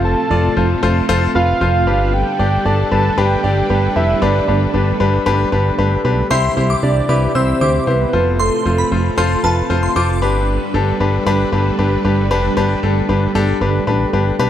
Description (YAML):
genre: synth-pop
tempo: 115 BPM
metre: 4/4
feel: straight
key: G mixolydian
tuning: A4 = 440 Hz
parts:
  - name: fat analog lead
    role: melody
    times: 0.0-9.4 s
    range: A4 to A5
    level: -20 LUFS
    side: right 2 dB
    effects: chorus
  - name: bright baby grand piano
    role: accompaniment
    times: 0.0-14.5 s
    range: D4 to D5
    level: -19 LUFS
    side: left 4 dB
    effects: none
  - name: string machine, cellos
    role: sustained chords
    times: 0.0-14.5 s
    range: C3 to B4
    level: -22 LUFS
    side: right 1 dB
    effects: ensemble chorus
  - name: solid FM bass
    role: bass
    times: 0.0-14.5 s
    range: F1 to D2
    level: -17 LUFS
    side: equal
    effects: none
  - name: shimmering bell with halo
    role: second line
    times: 6.3-10.3 s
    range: A5 to E6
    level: -22 LUFS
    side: right 2 dB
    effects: ensemble chorus, tape echo
room: light reverb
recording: none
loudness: -13 LUFS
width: side -10 dB against mid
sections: 0.0-6.3 A section; 6.3-14.5 B section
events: none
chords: 0.0 F; 1.9 Gadd9; 6.3 C; 8.1 F; 10.2 Gadd9